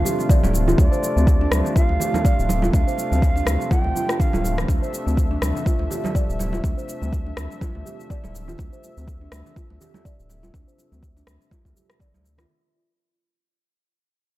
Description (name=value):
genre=afro house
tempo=123 BPM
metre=4/4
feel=swing 57% on 16ths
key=D minor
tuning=A4 = 436 Hz
part: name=mellow bansuri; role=melody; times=0.0-4.6 s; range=D5 to G5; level=-28 LUFS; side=right 2 dB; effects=tape echo
part: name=warm analog pad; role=sustained chords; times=0.0-12.5 s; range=C3 to E5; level=-30 LUFS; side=left 1 dB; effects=chorus, sidechain pumping
part: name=round analog bass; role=bass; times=0.0-12.5 s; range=D1 to D2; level=-23 LUFS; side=equal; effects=sidechain pumping
part: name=buzzing marimba with soft mallets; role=arpeggios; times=0.1-12.5 s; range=C4 to D5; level=-29 LUFS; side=equal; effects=sidechain pumping, low-pass filter, tape echo
part: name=electronic cabasa and rim click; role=drums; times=0.1-12.5 s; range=none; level=-30 LUFS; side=left 1 dB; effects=small room reverb
part: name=congas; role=percussion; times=0.1-12.5 s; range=none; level=-29 LUFS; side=right 3 dB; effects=none
part: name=electronic kick drum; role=drums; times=0.3-12.1 s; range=none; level=-20 LUFS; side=equal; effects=small room reverb
room=little or no reverb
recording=dark, warm production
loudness=-18 LUFS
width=side -16 dB against mid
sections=0.0-12.5 A section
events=fade-out 0.0-12.5; filter sweep on marimba 0.0-12.5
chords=0.0 Dm7